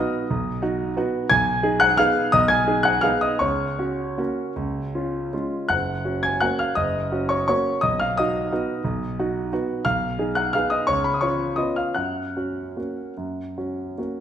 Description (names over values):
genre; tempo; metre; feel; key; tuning
classical, piano waltz; 144-186 BPM; 3/4; rubato; F# major; A4 = 439 Hz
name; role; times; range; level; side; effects
warm concert grand piano; solo; 0.0-14.2 s; F#1 to G#6; -20 LUFS; equal; none
room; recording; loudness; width
wet recital hall reverb, RT60 1.7 s; nothing above 11.0 kHz; -20 LUFS; side -9 dB against mid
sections
0.0-14.2 A section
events
none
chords
0.0 B; 1.3 G#m/B; 3.4 F#/C#; 4.6 C#; 5.7 F#; 7.8 B; 9.9 G#m/B; 10.9 C#7; 12.0 F#